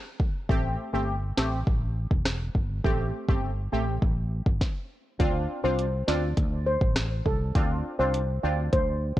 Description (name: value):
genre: dancehall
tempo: 102 BPM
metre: 4/4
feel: straight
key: D minor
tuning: A4 = 442 Hz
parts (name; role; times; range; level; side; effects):
- afro-pop drum kit; drums; 0.2-9.2 s; hi-hat, kick drum, rim click, snare drum; -26 LUFS; equal; none
- synth brass stab; accompaniment; 0.5-8.7 s; A3 to G4; -31 LUFS; equal; chorus, phaser
- mellow fretless electric bass; bass; 0.5-9.2 s; E1 to D2; -29 LUFS; equal; none
- steel pan; melody; 5.6-9.1 s; A4 to D5; -29 LUFS; equal; tape echo
room: little or no reverb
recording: worn, warbling old tape, cassette tape, warbly pitch drift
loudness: -24 LUFS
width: side -14 dB against mid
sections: 0.0-5.2 A section; 5.2-9.2 B section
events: stop 4.6-5.2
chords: 0.5 Am7; 5.2 Dm7